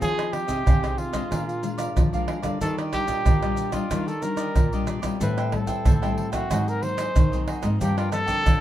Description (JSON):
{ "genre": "samba and choro", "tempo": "92 BPM", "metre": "4/4", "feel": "straight", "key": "unclear", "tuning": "A4 = 441 Hz", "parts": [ { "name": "dark trumpet", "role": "melody", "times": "0.0-8.6 s", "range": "F4 to C5", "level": "-28 LUFS", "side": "right 1 dB", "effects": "none" }, { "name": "cavaquinho", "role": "accompaniment", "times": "0.0-8.6 s", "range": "D4 to G5", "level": "-34 LUFS", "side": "right 2 dB", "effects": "none" }, { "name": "nylon-string guitar", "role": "accompaniment", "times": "0.0-8.6 s", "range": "G2 to Ab4", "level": "-32 LUFS", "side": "left 6 dB", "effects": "none" }, { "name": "nylon-string guitar", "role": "bass", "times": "0.0-8.6 s", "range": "G2 to F3", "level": "-29 LUFS", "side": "equal", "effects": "none" }, { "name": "maracas, surdo, pandeiro and tamborim", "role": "percussion", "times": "0.0-8.6 s", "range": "none", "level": "-24 LUFS", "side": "right 1 dB", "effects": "none" } ], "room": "moderate small room reverb, RT60 0.5 s", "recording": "minimal, uncompressed stereo recording", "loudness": "-21 LUFS", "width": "side -12 dB against mid", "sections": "0.0-8.6 A section", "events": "none", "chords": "0.0 Fm7; 1.3 Bb7; 2.6 Ebmaj9; 5.2 Am7; 6.5 Ab9; 7.8 Gm11" }